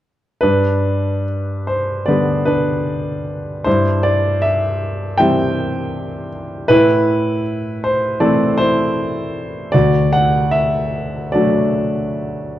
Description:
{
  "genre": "classical, lyrical solo piano",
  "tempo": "71-80 BPM",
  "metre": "4/4",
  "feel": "rubato",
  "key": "G major",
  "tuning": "A4 = 440 Hz",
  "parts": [
    { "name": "warm grand piano", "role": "solo", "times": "0.4-12.6 s", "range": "D2 to G5", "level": "-15 LUFS", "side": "equal", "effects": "none" }
  ],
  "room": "moderate recital hall reverb, RT60 1.4 s",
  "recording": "dark, warm production",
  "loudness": "-15 LUFS",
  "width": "side -13 dB against mid",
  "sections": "0.4-12.6 A section",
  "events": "none",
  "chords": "0.4 G; 3.7 C/G; 6.7 Am; 9.7 D",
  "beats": "| 0.43 1.27 2.08 2.87 | 3.66 4.44 5.20 5.94 | 6.69 7.44 8.20 8.95 | 9.73 10.53 11.34 12.17"
}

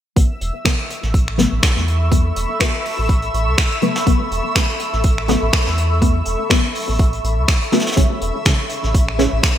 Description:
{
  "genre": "deep house",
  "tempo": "123 BPM",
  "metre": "4/4",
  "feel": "swing 56% on 16ths",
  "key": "A major",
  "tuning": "A4 = 440 Hz",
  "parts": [
    { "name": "filtered dub chord stab", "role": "stabs", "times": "0.2-9.3 s", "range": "C#3 to C#4", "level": "-21 LUFS", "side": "left 1 dB", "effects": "phaser, sidechain pumping, digital delay" },
    { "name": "sub bass with octave", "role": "bass", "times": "0.2-9.4 s", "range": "E1 to E2", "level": "-20 LUFS", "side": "equal", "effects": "sidechain pumping" },
    { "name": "electronic kick drum", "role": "drums", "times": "0.2-9.5 s", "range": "none", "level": "-16 LUFS", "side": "equal", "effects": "small room ambience" },
    { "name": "vintage brush drum kit", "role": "drums", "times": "0.2-9.6 s", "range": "hi-hat, snare drum", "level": "-26 LUFS", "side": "equal", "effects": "high-pass filter on hats, small room ambience, high-pass filter on snare, high-pass filter on room, gated reverb" },
    { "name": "analog string pad", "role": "texture", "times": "0.2-9.6 s", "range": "E5 to E6", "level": "-28 LUFS", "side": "equal", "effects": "ensemble chorus, sidechain pumping" },
    { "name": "ethereal airy pad", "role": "texture", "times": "1.4-9.6 s", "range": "C#4 to C#6", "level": "-25 LUFS", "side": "equal", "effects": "ensemble chorus, built-in reverb, sidechain pumping" },
    { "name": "electronic finger snaps", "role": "drums", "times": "0.7-9.5 s", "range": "none", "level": "-23 LUFS", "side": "equal", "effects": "small room ambience, gated reverb" }
  ],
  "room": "moderate lush hall reverb, RT60 1.8 s, small room ambience",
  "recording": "bright 1980s-style digital production",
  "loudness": "-15 LUFS",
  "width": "side -10 dB against mid",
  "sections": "0.2-9.6 A section",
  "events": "filter sweep on synth stab 0.2-9.6",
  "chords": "0.2 A69; 8.0 C#m",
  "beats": "| 0.17 0.65 1.14 1.63 | 2.12 2.60 3.09 3.58 | 4.07 4.55 5.04 5.53 | 6.02 6.51 6.99 7.48 | 7.97 8.46 8.95 9.43"
}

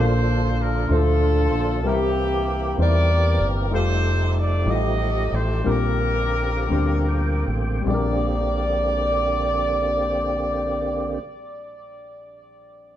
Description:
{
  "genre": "slow gospel",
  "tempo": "49-64 BPM (dotted quarters)",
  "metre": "6/8",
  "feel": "straight",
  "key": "Bb major",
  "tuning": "A4 = 439 Hz",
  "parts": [
    { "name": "warm horn section", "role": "melody", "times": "0.0-11.2 s", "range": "Bb3 to Eb5", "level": "-24 LUFS", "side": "left 1 dB", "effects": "tape echo" },
    { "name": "dark upright piano", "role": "accompaniment", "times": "0.0-13.0 s", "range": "Bb1 to C5", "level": "-27 LUFS", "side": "left 2 dB", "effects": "none" },
    { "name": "tonewheel organ", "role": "sustained chords", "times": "0.0-11.2 s", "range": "D3 to G5", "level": "-29 LUFS", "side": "right 3 dB", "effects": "slow rotary speaker, overdrive, chorus vibrato" },
    { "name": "deep dub fingered electric bass", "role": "bass", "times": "0.0-11.2 s", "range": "F1 to E2", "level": "-23 LUFS", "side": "equal", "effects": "none" }
  ],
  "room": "moderate studio reverb, RT60 0.5 s",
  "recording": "band playing live in one room",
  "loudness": "-19 LUFS",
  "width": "side -11 dB against mid",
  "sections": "0.0-7.9 A section; 7.9-12.7 B section",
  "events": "slowing down 3.7-7.9; tonewheel organ fill 6.7-7.9",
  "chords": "0.0 Bbmaj7; 1.8 C7; 3.7 F9; 5.7 Bb69",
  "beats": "0.91 | 1.84 2.78 | 3.71 4.66 | 5.65 6.71 | 7.86 9.08 | 10.30 11.53"
}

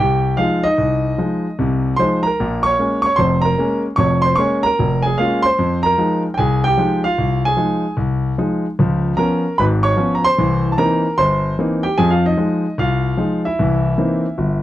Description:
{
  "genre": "solo jazz",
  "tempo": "150 BPM",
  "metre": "4/4",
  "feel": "swing 64% on 8ths",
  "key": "F minor",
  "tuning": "A4 = 440 Hz",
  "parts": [
    { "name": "warm grand piano", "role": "solo", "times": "0.0-14.6 s", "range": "F1 to Db6", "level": "-15 LUFS", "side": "equal", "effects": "none" }
  ],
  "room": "little or no reverb",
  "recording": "dry, close 1970s-style studio recording",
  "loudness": "-15 LUFS",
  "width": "side -14 dB against mid",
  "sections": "0.0-14.6 A section",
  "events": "none",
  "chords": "0.0 Fm7; 2.4 Bbm7; 5.6 Fm7; 8.8 Db7; 10.4 C7#9; 12.0 Fm7; 13.6 C7#9",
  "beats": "0.39 | 0.78 1.18 1.58 1.98 | 2.38 2.78 3.18 3.58 | 3.98 4.38 4.78 5.18 | 5.58 5.97 6.37 6.77 | 7.17 7.57 7.97 8.37 | 8.77 9.17 9.57 9.97 | 10.37 10.77 11.17 11.57 | 11.97 12.37 12.77 13.17 | 13.57 13.97 14.37"
}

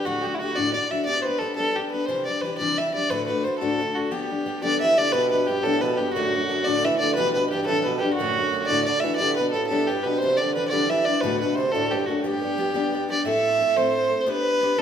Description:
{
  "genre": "celtic folk",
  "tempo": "118 BPM (dotted quarters)",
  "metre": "6/8",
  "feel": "straight",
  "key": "G major",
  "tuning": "A4 = 440 Hz",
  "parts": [
    { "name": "dark fiddle", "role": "melody", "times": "0.0-14.8 s", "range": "E4 to E5", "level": "-22 LUFS", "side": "right 1 dB", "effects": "none" },
    { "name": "picked steel-string acoustic guitar", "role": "accompaniment", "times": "0.0-14.8 s", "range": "D2 to B4", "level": "-27 LUFS", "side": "left 4 dB", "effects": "none" },
    { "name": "mellow bassoon", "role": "second line", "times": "4.6-13.1 s", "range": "F#2 to E3", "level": "-28 LUFS", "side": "right 6 dB", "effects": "none" }
  ],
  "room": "wet recital hall reverb, RT60 1.8 s",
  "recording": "minimal, uncompressed stereo recording",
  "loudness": "-21 LUFS",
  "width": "side -8 dB against mid",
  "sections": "0.0-5.1 A section; 5.1-13.3 A section; 13.3-14.8 B section",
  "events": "none",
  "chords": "0.1 Dsus4; 0.6 Dadd9; 1.1 G; 2.1 Cadd9; 3.1 D; 4.1 G; 6.2 D; 7.2 Cadd9; 8.2 Dsus4; 8.7 Dadd9; 9.2 G; 10.2 Cadd9; 11.2 D; 12.2 G; 13.3 Am; 14.3 G/B",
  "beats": "| 0.06 0.57 | 1.07 1.58 | 2.09 2.60 | 3.11 3.62 | 4.13 4.64 | 5.15 5.65 | 6.16 6.67 | 7.18 7.68 | 8.19 8.70 | 9.20 9.71 | 10.22 10.72 | 11.23 11.74 | 12.25 12.75 | 13.26 13.77 | 14.27 14.78"
}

